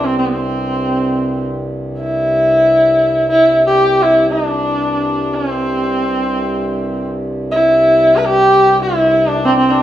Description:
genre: indian classical, Hindustani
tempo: free time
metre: none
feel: none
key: C raga hamsadhwani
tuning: A4 = 440 Hz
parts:
  - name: warm sarangi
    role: melody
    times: 0.0-9.8 s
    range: B3 to B4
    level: -12 LUFS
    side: equal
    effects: none
  - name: pedal harmonium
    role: drone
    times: 0.0-9.8 s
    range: C2 to G2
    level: -21 LUFS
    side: equal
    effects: none
room: wet large studio reverb, RT60 1.0 s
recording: band playing live in one room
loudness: -12 LUFS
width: side -12 dB against mid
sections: 0.0-9.8 A section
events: none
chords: none

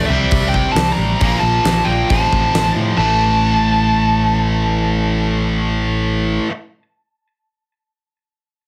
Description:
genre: hard rock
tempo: 135 BPM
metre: 4/4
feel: straight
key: A phrygian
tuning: A4 = 439 Hz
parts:
  - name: high-gain lead guitar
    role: melody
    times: 0.0-6.4 s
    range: E5 to Bb5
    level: -21 LUFS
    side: equal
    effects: distortion, plate reverb, analog delay
  - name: overdriven semi-hollow guitar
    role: riff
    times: 0.0-6.5 s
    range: F2 to C4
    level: -25 LUFS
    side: equal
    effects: none
  - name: scooped high-gain guitar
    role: riff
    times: 0.0-6.5 s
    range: F2 to C4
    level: -23 LUFS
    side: equal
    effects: distortion
  - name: modern bright picked electric bass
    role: bass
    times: 0.0-6.4 s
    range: A1 to A2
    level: -21 LUFS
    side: equal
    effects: none
  - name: huge arena drum kit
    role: drums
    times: 0.3-2.6 s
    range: hi-hat, kick drum, snare drum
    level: -22 LUFS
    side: equal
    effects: none
room: moderate studio reverb, RT60 0.5 s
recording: heavily compressed radio sound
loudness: -16 LUFS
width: mono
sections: 0.0-3.0 A section; 3.0-6.5 B section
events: none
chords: 0.1 C; 1.2 Bb5; 2.1 F/A; 3.0 A5

